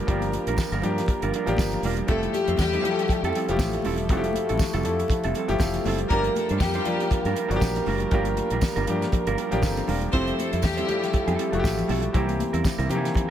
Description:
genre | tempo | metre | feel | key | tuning
disco | 119 BPM | 4/4 | swing 56% on 16ths | F major | A4 = 440 Hz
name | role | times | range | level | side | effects
mellow electric guitar | accompaniment | 0.0-13.2 s | G3 to C5 | -31 LUFS | right 6 dB | spring reverb
warm concert grand piano | accompaniment | 0.0-13.3 s | Eb3 to F5 | -28 LUFS | left 2 dB | none
warm French horn section | sustained chords | 0.0-13.3 s | C3 to Bb4 | -31 LUFS | right 3 dB | none
fingered electric bass | bass | 0.1-13.1 s | E1 to C3 | -28 LUFS | equal | none
damped 70s drum kit | drums | 0.1-13.3 s | hi-hat, kick drum, snare drum | -27 LUFS | equal | none
congas | percussion | 0.1-13.3 s | none | -36 LUFS | left 5 dB | none
tambourine | percussion | 0.6-12.8 s | none | -40 LUFS | right 6 dB | none
warm symphonic string section | second line | 2.1-11.3 s | G3 to C5 | -28 LUFS | left 2 dB | none
room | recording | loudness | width
light reverb, small room ambience | none | -22 LUFS | side -10 dB against mid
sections
0.0-13.3 A section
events
none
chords
0.0 Gm7; 2.1 Fmaj9; 6.1 Gm7; 10.1 Fmaj9; 12.1 C7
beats
| 0.08 0.58 1.08 1.58 | 2.09 2.59 3.09 3.59 | 4.10 4.60 5.10 5.60 | 6.11 6.61 7.11 7.62 | 8.12 8.62 9.12 9.63 | 10.13 10.63 11.14 11.64 | 12.14 12.65 13.15

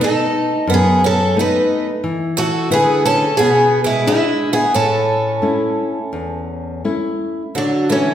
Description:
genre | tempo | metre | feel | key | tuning
fado-style ballad | 88 BPM | 4/4 | rubato | A major | A4 = 440 Hz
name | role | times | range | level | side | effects
picked twelve-string acoustic guitar | melody | 0.0-8.1 s | C#4 to B4 | -17 LUFS | equal | none
picked twelve-string acoustic guitar | second line | 0.0-8.1 s | E3 to D#4 | -21 LUFS | right 2 dB | none
nylon-string guitar | accompaniment | 0.0-8.1 s | E2 to B4 | -19 LUFS | left 2 dB | none
room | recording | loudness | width
wet recital hall reverb, RT60 1.4 s | recorded in a church or concert hall | -14 LUFS | side -10 dB against mid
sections
0.0-7.5 A section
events
none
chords
0.0 B7; 2.0 E7; 4.7 A; 7.5 D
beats
0.00 0.68 1.36 | 2.04 2.71 3.38 4.05 | 4.74 5.41 6.11 6.83 | 7.55

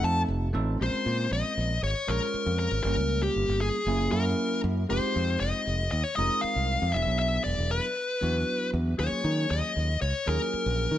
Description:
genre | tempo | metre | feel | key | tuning
electric jazz fusion | 117 BPM | 4/4 | straight | Bb minor | A4 = 440 Hz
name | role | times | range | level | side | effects
dark smooth lead guitar | melody | 0.0-11.0 s | G4 to A5 | -29 LUFS | left 3 dB | overdrive, tape echo
bell-like tine electric piano | accompaniment | 0.0-11.0 s | Gb3 to Db5 | -32 LUFS | right 2 dB | phaser
modern bright fingered electric bass | bass | 0.0-11.0 s | E1 to Eb3 | -28 LUFS | equal | none
room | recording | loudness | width
light reverb | none | -25 LUFS | side -12 dB against mid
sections
0.8-11.0 A section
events
none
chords
0.0 F7; 0.8 Bbm9; 2.9 Gm7b5; 3.9 Gb9; 4.9 Fm9; 6.9 E9; 9.0 Ebm11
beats
0.29 | 0.80 1.32 1.83 2.34 | 2.85 3.37 3.88 4.39 | 4.90 5.41 5.92 6.44 | 6.95 7.46 7.97 8.48 | 8.99 9.50 10.01 10.53

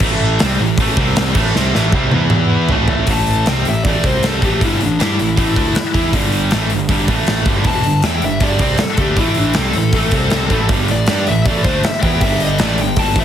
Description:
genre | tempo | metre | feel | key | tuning
hard rock | 158 BPM | 4/4 | straight | A minor | A4 = 440 Hz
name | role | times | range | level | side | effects
high-gain distorted guitar | riff | 0.0-13.2 s | E2 to G4 | -20 LUFS | right 11 dB | distortion
scooped high-gain guitar | riff | 0.0-13.2 s | E2 to G4 | -21 LUFS | left 10 dB | distortion
fuzz picked electric bass | bass | 0.0-13.2 s | E1 to G2 | -19 LUFS | equal | overdrive
gated 80s drum kit | drums | 0.0-13.2 s | crash cymbal, hi-hat, kick drum, snare drum, toms | -17 LUFS | equal | none
dark smooth lead guitar | melody | 3.1-13.2 s | D4 to A5 | -21 LUFS | left 2 dB | overdrive
room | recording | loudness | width
little or no reverb | heavily compressed radio sound, multiband compression | -13 LUFS | side -10 dB against mid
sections
0.0-3.1 A section; 3.1-13.2 B section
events
drum fill 1.6-3.1; lead electric guitar solo 3.1-13.2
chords
0.0 Am; 1.0 C5; 1.4 Am; 2.1 E5; 2.7 A5; 3.1 Am; 4.0 C5; 4.4 A5; 6.1 Gsus2; 7.1 A5; 7.5 Gadd9; 9.2 Am; 10.1 C5; 10.5 A5; 12.2 Gsus2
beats
| 0.03 0.41 0.79 1.17 | 1.56 1.94 2.32 2.70 | 3.08 3.47 3.85 4.23 | 4.61 4.99 5.37 5.75 | 6.14 6.52 6.90 7.28 | 7.66 8.04 8.42 8.80 | 9.18 9.56 9.94 10.32 | 10.70 11.08 11.46 11.84 | 12.22 12.60 12.98

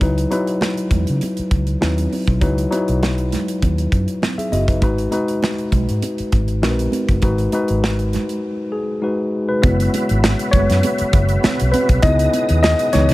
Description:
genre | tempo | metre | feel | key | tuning
lush 1970s-style soul | 100 BPM | 4/4 | swing 54% on 16ths | C# minor | A4 = 445 Hz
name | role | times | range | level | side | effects
tine electric piano | accompaniment | 0.0-13.1 s | E3 to E5 | -20 LUFS | left 2 dB | none
vintage muted fingered electric bass | bass | 0.0-13.1 s | F#1 to C#3 | -19 LUFS | equal | none
modern studio drum kit | drums | 0.0-13.1 s | hi-hat, kick drum, snare drum | -20 LUFS | equal | none
congas | percussion | 0.0-13.1 s | none | -27 LUFS | right 5 dB | none
overdriven tonewheel organ | sustained chords | 9.6-13.1 s | B2 to D#5 | -23 LUFS | right 1 dB | slow rotary speaker, chorus vibrato
room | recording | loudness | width
small room ambience | none | -16 LUFS | side -18 dB against mid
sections
0.0-9.6 A section; 9.6-13.1 B section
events
break 8.4-9.6; tine electric piano solo 9.6-13.1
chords
0.0 C#m11; 4.8 G#m7; 9.6 F#7sus4; 12.0 C#m9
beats
| 0.01 0.61 1.22 1.82 | 2.42 3.02 3.62 4.22 | 4.83 5.43 6.03 6.63 | 7.23 7.83 8.43 9.03 | 9.63 10.23 10.83 11.44 | 12.04 12.63

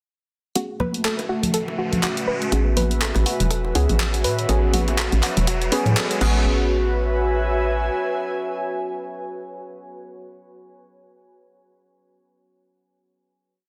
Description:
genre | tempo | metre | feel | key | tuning
deep house | 122 BPM | 4/4 | swing 58% on 16ths | A major | A4 = 440 Hz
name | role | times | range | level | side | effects
deep dark ambient pad | sustained chords | 1.3-9.6 s | A3 to G#5 | -34 LUFS | equal | chorus, built-in reverb, sidechain pumping
soft round pluck | arpeggios | 0.6-6.7 s | F#4 to B4 | -32 LUFS | equal | chorus, sidechain pumping, digital delay
deep mellow chord stab | stabs | 0.6-9.6 s | A3 to G#4 | -30 LUFS | equal | chorus, sidechain pumping, digital delay
deep house drum kit | drums | 0.6-6.3 s | crash cymbal, handclaps, hi-hat | -28 LUFS | equal | none
riser | sound effects | 1.3-6.5 s | none | -35 LUFS | equal | none
airy breathy pad | texture | 0.6-10.1 s | A3 to G#5 | -30 LUFS | equal | chorus, sidechain pumping
congas and bongos | percussion | 0.8-6.3 s | none | -30 LUFS | equal | none
hollow knocking FM bass | bass | 2.5-7.9 s | E1 to A2 | -23 LUFS | equal | sidechain pumping
electronic kick drum | drums | 2.5-6.3 s | none | -38 LUFS | equal | none
room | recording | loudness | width
light reverb, digital ambience | dense, heavily limited modern master | -22 LUFS | mono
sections
0.6-2.5 intro; 2.5-6.5 build; 6.5-10.4 final chord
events
riser 1.3-2.5, 2.5-6.5; build-up 2.5-6.5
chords
0.6 Amaj13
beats
| 0.56 1.05 1.54 2.03 | 2.52 3.01 3.51 4.00 | 4.49 4.98 5.47 5.96 | 6.46 6.95 7.44 7.93 | 8.42 8.92 9.41 9.90

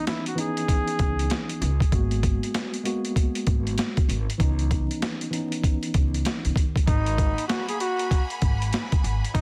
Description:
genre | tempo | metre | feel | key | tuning
hip hop, boom-bap hip-hop | 97 BPM | 4/4 | swing 62% on 16ths | G# minor | A4 = 439 Hz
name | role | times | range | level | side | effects
trumpet with bucket mute | melody | 0.0-1.5, 6.9-9.4 s | D#4 to G#4 | -33 LUFS | equal | delay
mellow tine electric piano | accompaniment | 0.0-6.6 s | E3 to F#4 | -32 LUFS | equal | cassette tape
boom bap sampler-style drum kit | drums | 0.1-9.4 s | hi-hat, kick drum, snare drum | -27 LUFS | equal | overdrive
upright bass | bass | 1.0-9.4 s | G#1 to D#2 | -28 LUFS | equal | none
warm studio string section | sustained chords | 6.9-9.4 s | A#3 to C#6 | -37 LUFS | equal | none
room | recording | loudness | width
small room ambience | dense, heavily limited modern master, vinyl crackle | -25 LUFS | mono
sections
0.0-9.4 A section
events
none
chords
0.0 C#m9; 1.9 G#m9; 4.4 C#m9; 6.9 G#m9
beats
0.07 0.69 1.30 | 1.92 2.54 3.16 3.78 | 4.40 5.02 5.63 6.25 | 6.87 7.49 8.11 8.73 | 9.35

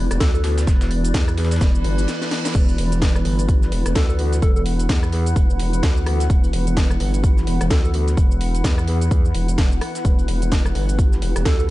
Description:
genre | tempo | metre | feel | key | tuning
bass house | 128 BPM | 4/4 | swing 59% on 16ths | E minor | A4 = 440 Hz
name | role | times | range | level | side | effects
sweeping resonant pad | sustained chords | 0.0-11.7 s | E3 to B4 | -29 LUFS | equal | chorus, sidechain pumping
vowel-sweep wobble bass | bass | 0.0-11.7 s | E1 to E2 | -20 LUFS | equal | chorus, overdrive, sidechain pumping
granular cloud pad | texture | 0.0-11.7 s | E4 to A5 | -30 LUFS | left 1 dB | built-in reverb, sidechain pumping
breakbeat sampler-style drum kit | drums | 0.1-11.6 s | hi-hat, snare drum | -38 LUFS | right 1 dB | sidechain pumping on hats, high-pass filter on hats, high-pass filter on snare
house drum kit | drums | 0.1-11.7 s | crash cymbal, hi-hat, rim click, shaker, snare drum | -28 LUFS | equal | none
soft struck synth lead | melody | 0.2-0.4, 4.0-4.6, 7.7-7.9, 11.5-11.7 s | A4 | -29 LUFS | right 1 dB | chorus, digital delay
electronic kick drum | drums | 0.2-11.6 s | none | -18 LUFS | equal | none
reverse cymbal | sound effects | 1.8-2.5 s | none | -34 LUFS | right 6 dB | none
room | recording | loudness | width
little or no reverb | nothing above 10.4 kHz | -16 LUFS | side -17 dB against mid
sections
0.0-11.7 A section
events
reverse cymbal 1.8-2.5; break 2.1-2.5; drum fill 2.1-2.5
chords
0.0 E5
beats
0.20 | 0.67 1.14 1.61 2.08 | 2.55 3.02 3.49 3.96 | 4.42 4.89 5.36 5.83 | 6.30 6.77 7.24 7.71 | 8.17 8.64 9.11 9.58 | 10.05 10.52 10.99 11.46

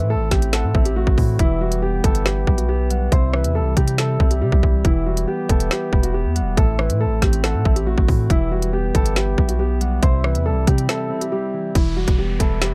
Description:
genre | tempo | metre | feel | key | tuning
hip hop, drill | 139 BPM | 4/4 | half-time | E minor | A4 = 439 Hz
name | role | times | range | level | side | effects
dark baby grand piano | melody | 0.0-12.7 s | E4 to C5 | -28 LUFS | equal | slapback echo
soft octave-layered synth lead | second line | 0.0-11.7 s | E5 to G5 | -34 LUFS | equal | chorus, slapback echo
mellow electric guitar | accompaniment | 0.0-12.7 s | A2 to E4 | -30 LUFS | equal | spring reverb
pedal harmonium | sustained chords | 0.0-11.7 s | C3 to G4 | -35 LUFS | equal | none
long sustained 808-style bass | bass | 0.0-12.7 s | E1 to C3 | -23 LUFS | equal | none
drill drum kit | drums | 0.3-12.7 s | hi-hat, kick drum, rim click, snare drum | -20 LUFS | equal | none
downlifter | sound effects | 11.8-12.7 s | none | -39 LUFS | equal | none
room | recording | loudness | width
little or no reverb | dark, warm production | -19 LUFS | mono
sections
0.0-11.8 A section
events
break 10.9-11.8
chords
0.0 Am; 1.4 Em; 3.1 C; 4.8 Em; 6.6 Am; 8.3 Em; 10.0 C; 11.8 Em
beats
0.10 0.53 0.96 | 1.39 1.82 2.26 2.69 | 3.12 3.55 3.98 4.42 | 4.85 5.28 5.71 6.14 | 6.57 7.00 7.44 7.87 | 8.30 8.73 9.16 9.60 | 10.03 10.46 10.89 11.32 | 11.75 12.19 12.62

